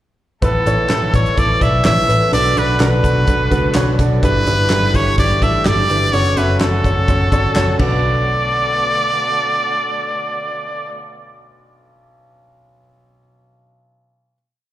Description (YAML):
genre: piano-driven pop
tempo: 126 BPM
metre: 4/4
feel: straight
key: B minor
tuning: A4 = 441 Hz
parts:
  - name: brilliant trumpet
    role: melody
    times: 0.4-11.0 s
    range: A4 to E5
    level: -18 LUFS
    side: right 1 dB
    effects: slapback echo
  - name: clear baby grand piano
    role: accompaniment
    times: 0.4-14.4 s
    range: B1 to E5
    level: -21 LUFS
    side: right 1 dB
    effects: slapback echo
  - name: muted studio string section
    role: sustained chords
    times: 0.4-10.9 s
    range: B2 to A4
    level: -29 LUFS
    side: left 1 dB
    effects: none
  - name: vintage muted picked electric bass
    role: bass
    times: 0.4-11.0 s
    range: F#1 to C#2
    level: -18 LUFS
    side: equal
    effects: none
  - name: damped 70s drum kit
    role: drums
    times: 0.4-7.9 s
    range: crash cymbal, handclaps, hi-hat, kick drum, snare drum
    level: -19 LUFS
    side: equal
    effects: none
room: light reverb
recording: live gig heard through the venue's PA, recital hall reverb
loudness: -13 LUFS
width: side -13 dB against mid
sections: 0.4-8.0 pre-chorus; 8.0-11.8 final hit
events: none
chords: 0.4 Asus2; 2.3 Bm7; 4.2 G6; 6.1 F#m; 7.8 Bm7